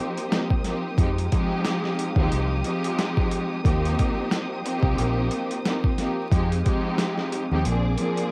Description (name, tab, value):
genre	hip hop, boom-bap hip-hop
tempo	90 BPM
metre	4/4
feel	swing 58% on 16ths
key	Eb major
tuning	A4 = 440 Hz
part	warm studio string section	accompaniment	0.0-8.3 s	F3 to Ab4	-28 LUFS	equal	cassette tape, high-pass filter, low-pass filter
part	warm symphonic string section	sustained chords	0.0-8.3 s	Ab3 to Eb6	-39 LUFS	equal	high-pass filter, low-pass filter
part	boom bap sampler-style drum kit	drums	0.2-8.3 s	hi-hat, kick drum, snare drum	-27 LUFS	equal	overdrive, cassette tape
part	deep dub fingered electric bass	bass	1.0-7.9 s	Bb1 to F2	-27 LUFS	equal	none
room	small room ambience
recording	home recording on cassette, vinyl crackle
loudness	-24 LUFS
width	mono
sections	0.0-8.3 A section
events	none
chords	0.0 Eb6; 1.0 Fm7; 3.6 Eb6; 6.3 Fm7; 7.6 Bb7